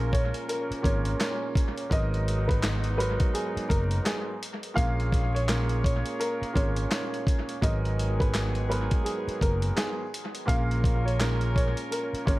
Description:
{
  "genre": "hip hop, boom-bap hip-hop",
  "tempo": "84 BPM",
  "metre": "4/4",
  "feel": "swing 61% on 16ths",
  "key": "G# dorian",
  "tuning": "A4 = 441 Hz",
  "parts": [
    { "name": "dark baby grand piano", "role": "accompaniment", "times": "0.0-12.4 s", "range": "G#2 to A#4", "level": "-34 LUFS", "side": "right 2 dB", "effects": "cassette tape, high-pass filter, low-pass filter, analog delay" },
    { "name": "warm horn section", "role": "stabs", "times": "0.0-12.4 s", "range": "D#3 to C#5", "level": "-38 LUFS", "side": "equal", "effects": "high-pass filter, low-pass filter, analog delay" },
    { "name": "hollow-body short-scale fingered electric bass", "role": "bass", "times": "0.0-12.4 s", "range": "F#1 to A#1", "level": "-28 LUFS", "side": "equal", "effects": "none" },
    { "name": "dark upright piano", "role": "melody", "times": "0.1-12.4 s", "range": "G#4 to E#5", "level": "-33 LUFS", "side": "equal", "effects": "high-pass filter, low-pass filter, analog delay" },
    { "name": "dusty soul sampler-style drum kit", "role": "drums", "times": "0.1-12.4 s", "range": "handclaps, hi-hat, kick drum, snare drum", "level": "-28 LUFS", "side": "equal", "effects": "analog delay" }
  ],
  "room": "small room ambience",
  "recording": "echo-heavy mix, vinyl crackle",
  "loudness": "-25 LUFS",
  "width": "side -19 dB against mid",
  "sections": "0.0-12.4 A section",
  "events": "none",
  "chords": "0.0 A#m7; 1.9 G#m9; 4.8 A#m7; 7.6 G#m9; 10.5 A#m7"
}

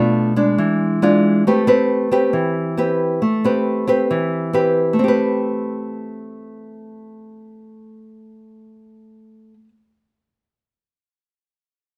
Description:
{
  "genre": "bossa nova",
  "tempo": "137 BPM",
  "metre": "4/4",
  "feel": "straight",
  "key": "A minor",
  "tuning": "A4 = 439 Hz",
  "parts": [
    { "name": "nylon-string guitar", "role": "accompaniment", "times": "0.0-9.7 s", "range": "B2 to B4", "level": "-18 LUFS", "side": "equal", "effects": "none" }
  ],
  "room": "moderate large studio reverb, RT60 1.2 s",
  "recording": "none",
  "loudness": "-18 LUFS",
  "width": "mono",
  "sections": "0.0-5.0 A section; 5.0-8.5 B section",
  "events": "none",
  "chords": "0.0 Bm7b5; 0.6 E7b9; 1.5 Am9"
}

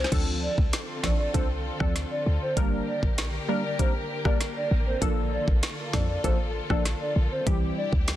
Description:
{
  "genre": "dancehall",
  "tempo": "98 BPM",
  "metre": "4/4",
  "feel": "straight",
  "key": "unclear",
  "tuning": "A4 = 441 Hz",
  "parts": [
    { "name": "hollow clarinet-like synth lead", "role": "melody", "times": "0.0-7.9 s", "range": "C5 to D5", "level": "-32 LUFS", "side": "equal", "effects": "chorus, tape echo" },
    { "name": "warm studio string section", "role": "sustained chords", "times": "0.0-8.2 s", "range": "C3 to Bb4", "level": "-35 LUFS", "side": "left 1 dB", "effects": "sidechain pumping" },
    { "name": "short 808-style bass", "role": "bass", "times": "0.0-8.2 s", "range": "G1 to F2", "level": "-28 LUFS", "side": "equal", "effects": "none" },
    { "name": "island pop drum kit", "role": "drums", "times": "0.0-8.2 s", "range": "crash cymbal, hi-hat, kick drum, rim click, snare drum", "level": "-26 LUFS", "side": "equal", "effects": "vintage 12-bit sampler grit" },
    { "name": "wavetable chord stab", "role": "accompaniment", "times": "0.1-8.0 s", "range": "E3 to Bb4", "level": "-32 LUFS", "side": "equal", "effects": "sidechain pumping" }
  ],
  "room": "light reverb, digital ambience",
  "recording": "dense, heavily limited modern master",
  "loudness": "-24 LUFS",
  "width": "side -13 dB against mid",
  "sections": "0.1-8.2 A section",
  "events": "none",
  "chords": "0.1 Dm7; 2.6 Gm; 5.0 Bbmaj7; 7.5 C"
}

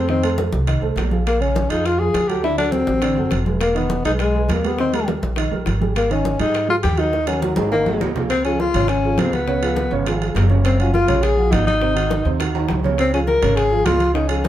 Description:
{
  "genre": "Afro-Cuban jazz",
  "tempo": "205 BPM",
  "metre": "4/4",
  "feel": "straight",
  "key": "Db major from 8.3 s",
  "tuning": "A4 = 440 Hz",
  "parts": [
    { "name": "breathy tenor saxophone", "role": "melody", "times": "0.0-14.5 s", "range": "Gb3 to Bb4", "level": "-19 LUFS", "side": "left 2 dB", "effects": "none" },
    { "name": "dark upright piano", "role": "accompaniment", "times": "0.0-14.5 s", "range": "C3 to Eb5", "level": "-24 LUFS", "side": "right 5 dB", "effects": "none" },
    { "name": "upright bass", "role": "bass", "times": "0.0-14.5 s", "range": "E1 to Ab2", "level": "-22 LUFS", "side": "equal", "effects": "none" },
    { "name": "bongos", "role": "percussion", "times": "0.1-14.5 s", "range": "none", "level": "-32 LUFS", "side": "left 5 dB", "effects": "none" },
    { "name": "congas", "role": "percussion", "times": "0.1-14.5 s", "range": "none", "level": "-27 LUFS", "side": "equal", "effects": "none" },
    { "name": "timbales", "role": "percussion", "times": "0.2-14.5 s", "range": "none", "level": "-30 LUFS", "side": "right 6 dB", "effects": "none" }
  ],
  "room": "moderate studio reverb, RT60 0.7 s",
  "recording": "band playing live in one room",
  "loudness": "-16 LUFS",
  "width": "side -12 dB against mid",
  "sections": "0.0-8.3 A section; 8.3-14.5 B section",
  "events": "drum fill 7.1-8.3, 12.5-13.0",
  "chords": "0.1 F7; 1.3 Bbm7; 2.4 D9; 3.6 Emaj7; 4.8 Eb; 6.0 Ab5; 7.1 Ebm; 7.7 Absus2; 8.3 Db; 9.5 Db7; 10.6 Gbmaj9; 11.8 Ab7; 13.0 Db"
}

